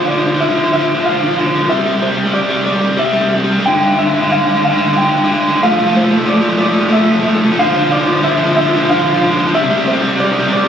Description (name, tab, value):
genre	rock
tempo	61 BPM (dotted quarters)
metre	6/8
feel	straight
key	unclear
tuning	A4 = 441 Hz
part	electric guitar through a small old amp	melody	0.0-10.7 s	C5 to G5	-17 LUFS	equal	none
part	overdriven electric guitar	riff	0.0-10.7 s	G2 to A3	-12 LUFS	equal	none
room	wet stone room reverb, RT60 1.2 s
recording	band playing live in one room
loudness	-11 LUFS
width	side -8 dB against mid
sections	0.0-10.7 A section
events	build-up 0.0-10.7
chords	0.0 Dm; 1.7 C5; 3.7 G5; 5.6 F; 7.6 Dm; 9.5 C5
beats	0.72 | 1.71 2.69 | 3.67 4.65 | 5.63 6.61 | 7.59 8.57 | 9.54 10.52